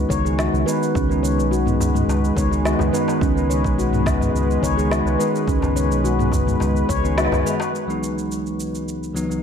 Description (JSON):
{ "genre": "organic downtempo", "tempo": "106 BPM", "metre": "4/4", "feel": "straight", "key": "unclear", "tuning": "A4 = 439 Hz", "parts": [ { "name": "bell-like tine electric piano", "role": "accompaniment", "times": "0.0-9.4 s", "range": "C#2 to G#4", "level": "-24 LUFS", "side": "left 2 dB", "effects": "sidechain pumping, digital delay" }, { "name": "warm analog pad", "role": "sustained chords", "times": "0.0-9.4 s", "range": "C#3 to D#5", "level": "-27 LUFS", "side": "right 1 dB", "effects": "chorus, tremolo, sidechain pumping" }, { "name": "round analog bass", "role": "bass", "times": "0.0-7.4 s", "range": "B1 to C#2", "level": "-22 LUFS", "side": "right 1 dB", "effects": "none" }, { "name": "handpan", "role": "arpeggios", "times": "0.1-7.6 s", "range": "G#3 to C#5", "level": "-24 LUFS", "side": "left 2 dB", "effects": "vintage 12-bit sampler grit, digital delay" }, { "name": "electronic kick drum", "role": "drums", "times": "0.1-7.0 s", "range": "none", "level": "-25 LUFS", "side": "right 1 dB", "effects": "overdrive" }, { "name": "organic electronic drum kit", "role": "drums", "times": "0.1-9.4 s", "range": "shaker, snare drum, toms", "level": "-27 LUFS", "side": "right 1 dB", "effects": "none" }, { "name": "darbuka", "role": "percussion", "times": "0.7-7.7 s", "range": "none", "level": "-32 LUFS", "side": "left 2 dB", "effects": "none" } ], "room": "moderate lush hall reverb, RT60 1.7 s, digital ambience", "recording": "dark, warm production", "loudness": "-18 LUFS", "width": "side -7 dB against mid", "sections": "0.0-7.7 A section; 7.7-9.4 B section", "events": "band accent 7.2; filter sweep on analog synth pad 7.7-9.4", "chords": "0.0 G#m; 7.7 C#m11" }